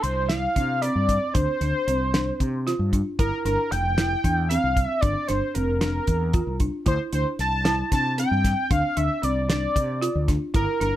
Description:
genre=progressive instrumental, band music in an uneven meter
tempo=228 BPM (eighths)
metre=7/8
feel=straight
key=D minor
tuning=A4 = 440 Hz
part: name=octave-doubled lead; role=melody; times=0.0-10.9 s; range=Bb4 to A5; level=-25 LUFS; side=equal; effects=chorus
part: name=folk marimba with medium mallets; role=arpeggios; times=0.0-11.0 s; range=C4 to F4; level=-29 LUFS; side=right 1 dB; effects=none
part: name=fretless electric bass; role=bass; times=0.0-10.9 s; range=F1 to C3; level=-26 LUFS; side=equal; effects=none
part: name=damped 70s drum kit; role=drums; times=0.0-10.9 s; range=hi-hat, kick drum, snare drum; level=-25 LUFS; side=equal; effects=none
room=light reverb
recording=none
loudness=-21 LUFS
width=side -13 dB against mid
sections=0.0-11.0 A section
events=none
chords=0.0 Dm7; 3.2 Gm7; 6.9 D7(no3)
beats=0.04 0.30 0.56 0.82 1.09 | 1.35 1.61 1.88 2.14 2.40 2.66 2.93 | 3.19 3.45 3.71 3.98 4.24 4.50 4.77 | 5.03 5.29 5.55 5.82 6.08 6.34 6.60 | 6.87 7.13 7.39 7.66 7.92 8.18 8.44 | 8.71 8.97 9.23 9.49 9.76 10.02 10.28 | 10.54 10.80

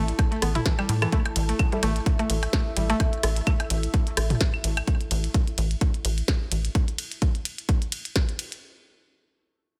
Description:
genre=minimal techno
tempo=128 BPM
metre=4/4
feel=swing 56% on 16ths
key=unclear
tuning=A4 = 439 Hz
part: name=rubbery square bass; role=bass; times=0.0-6.7 s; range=A1 to A2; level=-28 LUFS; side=equal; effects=tube saturation, sidechain pumping
part: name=deep dark ambient pad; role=texture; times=0.0-4.9 s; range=E4 to A5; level=-38 LUFS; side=equal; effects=chorus, built-in reverb, sidechain pumping
part: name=pulsing gated texture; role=texture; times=0.0-4.9 s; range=A4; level=-47 LUFS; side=equal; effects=none
part: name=minimal click drum kit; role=drums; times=0.1-8.6 s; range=hi-hat, ride cymbal, snare drum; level=-33 LUFS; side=equal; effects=studio reverb
part: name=electronic kick drum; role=drums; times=0.2-8.3 s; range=none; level=-25 LUFS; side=equal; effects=studio reverb
part: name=minimal click drum kit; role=percussion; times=0.2-4.9 s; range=claves, percussion blips, rim click, toms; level=-32 LUFS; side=equal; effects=studio reverb, digital delay
part: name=mallet-like synth pluck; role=riff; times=0.3-3.0 s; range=E3 to E4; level=-32 LUFS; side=equal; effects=chorus, sidechain pumping, dub echo
part: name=filtered dub chord stab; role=stabs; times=1.7-1.8 s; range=A3 to A4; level=-38 LUFS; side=equal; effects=none
room=little or no reverb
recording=none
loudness=-25 LUFS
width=mono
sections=0.0-8.6 A section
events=drop 0.0-8.6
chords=0.0 A5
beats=0.19 0.66 | 1.12 1.59 2.06 2.53 | 3.00 3.47 3.94 4.41 | 4.88 5.34 5.81 6.28 | 6.75 7.22 7.69 8.16

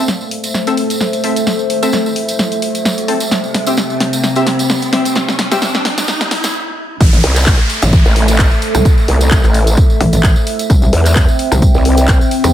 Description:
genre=bass house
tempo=130 BPM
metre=4/4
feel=swing 55% on 16ths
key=A minor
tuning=A4 = 440 Hz
part: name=dark analog pad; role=sustained chords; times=0.0-12.5 s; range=C3 to G5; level=-18 LUFS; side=equal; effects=chorus, phaser, sidechain pumping
part: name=orchestra-hit-like synth stab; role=stabs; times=0.0-5.6 s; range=C4 to A5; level=-20 LUFS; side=left 1 dB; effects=built-in reverb, vintage 12-bit sampler grit, sidechain pumping, dub echo
part: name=riser and downlifter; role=sound effects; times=1.6-10.7 s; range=none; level=-23 LUFS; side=equal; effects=none
part: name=house drum kit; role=drums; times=0.1-12.5 s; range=handclaps, hi-hat, snare drum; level=-18 LUFS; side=equal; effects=small room ambience
part: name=tambourine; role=percussion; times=0.1-12.5 s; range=none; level=-24 LUFS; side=right 3 dB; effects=none
part: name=metallic wobble bass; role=bass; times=7.0-12.5 s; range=A1 to E2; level=-12 LUFS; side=equal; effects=distortion, chorus, tube saturation, sidechain pumping
part: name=electronic kick drum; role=drums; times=7.0-12.2 s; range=none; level=-11 LUFS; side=equal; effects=small room ambience
part: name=growl bass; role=bass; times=7.2-12.2 s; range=A1 to E2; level=-12 LUFS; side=equal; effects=chorus, tube saturation, sidechain pumping
room=light reverb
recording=high-pass filter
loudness=-10 LUFS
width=side -11 dB against mid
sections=0.0-7.0 A section; 7.0-12.5 B section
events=build-up 0.0-7.0; drum fill 0.0-6.5; riser 1.6-6.5; stop 6.5-7.0; drop 7.0-12.5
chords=0.0 Am; 3.3 C; 7.0 Am; 10.7 C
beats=0.08 0.54 1.01 | 1.47 1.93 2.39 2.85 | 3.31 3.77 4.24 4.70 | 5.16 5.62 6.08 6.54 | 7.01 7.47 7.93 8.39 | 8.85 9.31 9.78 10.24 | 10.70 11.16 11.62 12.08

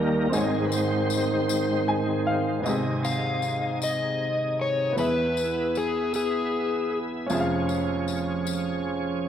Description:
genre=slow gospel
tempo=52 BPM (dotted quarters)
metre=6/8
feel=straight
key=Ab major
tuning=A4 = 440 Hz
part: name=clear baby grand piano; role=accompaniment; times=0.0-9.3 s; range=F1 to Ab5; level=-29 LUFS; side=equal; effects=none
part: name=bright tonewheel organ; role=sustained chords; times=0.0-9.3 s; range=Ab2 to E5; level=-26 LUFS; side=right 1 dB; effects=slow rotary speaker, overdrive, chorus vibrato
part: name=tambourine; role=percussion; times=0.3-8.8 s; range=none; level=-38 LUFS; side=left 8 dB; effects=none
part: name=overdriven slide guitar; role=melody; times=3.0-7.0 s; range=G#4 to F5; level=-26 LUFS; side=left 3 dB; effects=none
room=wet recital hall reverb, RT60 1.6 s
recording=dark, warm production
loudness=-23 LUFS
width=side -9 dB against mid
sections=0.0-2.6 A section; 2.6-9.3 B section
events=tonewheel organ solo 0.0-2.6; grand piano fill 1.5-2.6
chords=0.3 Ab; 5.0 E; 7.3 Db/F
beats=| 0.32 1.48 | 2.65 3.81 | 4.97 6.13 | 7.30 8.46

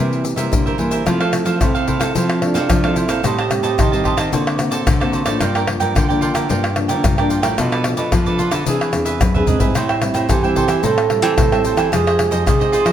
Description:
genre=samba and choro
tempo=110 BPM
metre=4/4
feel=straight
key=F major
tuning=A4 = 440 Hz
part: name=breathy trombone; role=second line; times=0.0-4.3, 9.5-12.9 s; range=E3 to A4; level=-20 LUFS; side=right 6 dB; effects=none
part: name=cavaquinho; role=accompaniment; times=0.0-12.9 s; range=D4 to A5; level=-22 LUFS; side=right 5 dB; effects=none
part: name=nylon-string guitar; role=accompaniment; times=0.0-12.9 s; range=G2 to G#4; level=-23 LUFS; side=left 2 dB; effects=none
part: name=nylon-string guitar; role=bass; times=0.0-12.9 s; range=E2 to F3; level=-21 LUFS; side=equal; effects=none
part: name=tube shaker, pandeiro, surdo and tamborim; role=percussion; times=0.1-12.9 s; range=none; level=-19 LUFS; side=left 2 dB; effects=none
room=moderate large studio reverb, RT60 1.4 s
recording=none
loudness=-14 LUFS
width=side -10 dB against mid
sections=0.0-1.1 A section; 1.1-12.9 B section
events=trombone solo 1.1-12.9; drum fill 9.2-9.8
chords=0.0 C7; 1.1 Fmaj7; 3.2 Am7b5; 4.3 D7b13; 5.4 Gm7; 7.6 Bm7b5; 8.7 E7b13; 9.8 Am7; 11.9 Fm9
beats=0.52 | 1.06 1.60 2.15 2.69 | 3.24 3.78 4.32 4.87 | 5.41 5.95 6.50 7.04 | 7.58 8.13 8.67 9.21 | 9.75 10.30 10.84 11.38 | 11.92 12.46

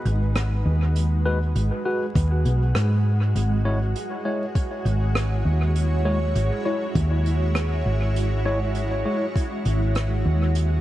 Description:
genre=ambient dub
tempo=100 BPM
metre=4/4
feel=straight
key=unclear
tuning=A4 = 439 Hz
part: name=granular cloud pad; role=sustained chords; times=0.0-10.8 s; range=G#3 to C#5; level=-29 LUFS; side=right 1 dB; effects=built-in reverb
part: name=hollow-body short-scale fingered electric bass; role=bass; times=0.1-10.8 s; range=G#1 to G#2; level=-21 LUFS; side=equal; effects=tube saturation
part: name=jazz brush drum kit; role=drums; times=0.1-10.7 s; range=hi-hat, rim click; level=-32 LUFS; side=right 1 dB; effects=dub echo
part: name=tine electric piano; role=stabs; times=1.3-9.3 s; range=G#3 to C#5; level=-30 LUFS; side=left 1 dB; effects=phaser, dub echo
part: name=electronic kick drum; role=drums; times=2.2-9.5 s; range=none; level=-23 LUFS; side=equal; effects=none
room=little or no reverb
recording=vinyl crackle, nothing above 10.8 kHz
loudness=-20 LUFS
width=side -14 dB against mid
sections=0.0-10.8 A section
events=none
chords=0.0 G#m7; 3.4 E6/G#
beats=0.35 | 0.95 1.55 2.15 2.75 | 3.35 3.95 4.55 5.15 | 5.75 6.35 6.95 7.55 | 8.15 8.75 9.35 9.95 | 10.55

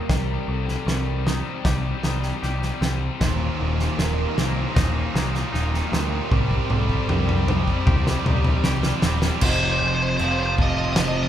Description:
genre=post-rock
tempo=77 BPM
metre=4/4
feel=straight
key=unclear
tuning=A4 = 439 Hz
part: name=clear studio string section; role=sustained chords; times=0.0-11.3 s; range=C3 to A5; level=-38 LUFS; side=equal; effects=none
part: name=twangy electric guitar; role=arpeggios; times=0.0-9.4 s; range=Eb2 to G4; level=-32 LUFS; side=left 2 dB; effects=phaser
part: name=vibraphone with soft mallets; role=arpeggios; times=0.0-11.3 s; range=A4 to F5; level=-34 LUFS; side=right 4 dB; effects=none
part: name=distorted electric guitar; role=riff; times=0.0-11.3 s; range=Eb2 to G3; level=-30 LUFS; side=left 6 dB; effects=distortion
part: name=growling picked electric bass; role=bass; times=0.1-11.3 s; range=Eb1 to D2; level=-25 LUFS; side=equal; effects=overdrive
part: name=loose indie drum kit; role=drums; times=0.1-11.1 s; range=crash cymbal, kick drum, snare drum, toms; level=-24 LUFS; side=equal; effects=none
part: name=tight distorted guitar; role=riff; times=3.2-11.3 s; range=Eb2 to G3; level=-29 LUFS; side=right 7 dB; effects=distortion
part: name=biting overdriven guitar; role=melody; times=9.4-11.3 s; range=C5 to Eb5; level=-23 LUFS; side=equal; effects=none
room=moderate large studio reverb, RT60 1.1 s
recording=band playing live in one room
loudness=-20 LUFS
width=side -10 dB against mid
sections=0.0-9.4 A section; 9.4-11.3 B section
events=build-up 0.0-9.4; drum fill 6.3-9.4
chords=0.1 Cm; 3.2 Ebadd9; 6.3 Cm; 9.4 F7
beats=| 0.10 0.88 1.66 2.44 | 3.21 3.99 4.77 5.54 | 6.32 7.09 7.87 8.65 | 9.42 10.20 10.97

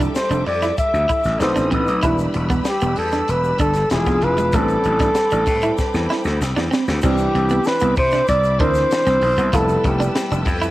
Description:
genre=polished 1980s jazz-funk pop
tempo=96 BPM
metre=4/4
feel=straight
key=unclear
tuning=A4 = 440 Hz
part: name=warm concert grand piano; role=accompaniment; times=0.0-10.7 s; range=E3 to D5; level=-25 LUFS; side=equal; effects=analog chorus, cassette tape
part: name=bright studio string section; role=sustained chords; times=0.0-10.7 s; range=C4 to E6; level=-31 LUFS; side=equal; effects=cassette tape
part: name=clean electric guitar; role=riff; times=0.0-10.7 s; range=G#3 to F4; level=-24 LUFS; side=right 3 dB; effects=lush chorus, cassette tape
part: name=gritty slap bass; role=bass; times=0.0-10.7 s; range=E1 to C3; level=-21 LUFS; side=equal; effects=overdrive
part: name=egg shaker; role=percussion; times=0.0-10.7 s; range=none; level=-42 LUFS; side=left 6 dB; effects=none
part: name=breathy flugelhorn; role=melody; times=0.2-10.4 s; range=G4 to E5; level=-20 LUFS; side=equal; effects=cassette tape
part: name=crisp fusion drum kit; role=drums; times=0.2-10.7 s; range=crash cymbal, hi-hat, kick drum, snare drum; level=-24 LUFS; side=equal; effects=cassette tape
room=little or no reverb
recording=home recording on cassette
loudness=-16 LUFS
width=side -16 dB against mid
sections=0.0-7.0 A section; 7.0-10.7 B section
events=drum fill 5.8-7.0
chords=0.0 Fmaj13; 1.4 B7b9; 2.0 Em7; 3.9 E7b9; 4.5 Am11; 7.0 Cmaj9; 9.5 Fmaj9#11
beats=0.16 0.78 1.41 | 2.03 2.66 3.29 3.91 | 4.54 5.16 5.78 6.41 | 7.03 7.66 8.28 8.90 | 9.53 10.15

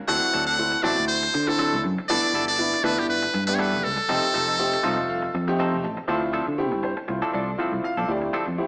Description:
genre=jazz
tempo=120 BPM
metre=4/4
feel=swing 55% on 16ths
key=unclear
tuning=A4 = 440 Hz
part: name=trumpet with metal mute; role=melody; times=0.1-5.6 s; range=G4 to F#5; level=-23 LUFS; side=equal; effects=none
part: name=clear concert grand piano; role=accompaniment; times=0.1-8.7 s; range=A3 to A5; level=-26 LUFS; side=equal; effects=none
part: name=semi-hollow electric guitar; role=stabs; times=0.1-8.5 s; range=E3 to A4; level=-29 LUFS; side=equal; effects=none
part: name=fretless electric bass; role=bass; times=0.1-8.6 s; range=F1 to D3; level=-29 LUFS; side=equal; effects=none
room=wet stone room reverb, RT60 1.2 s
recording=band playing live in one room, small speaker sound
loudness=-21 LUFS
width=side -33 dB against mid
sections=0.0-6.1 A section; 6.1-8.7 B section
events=grand piano fill 4.6-6.1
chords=0.1 D7; 2.1 G69; 4.1 F7; 6.1 Dm7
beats=| 0.09 0.59 1.09 1.59 | 2.10 2.60 3.10 3.60 | 4.10 4.60 5.10 5.60 | 6.10 6.60 7.09 7.59 | 8.09 8.59

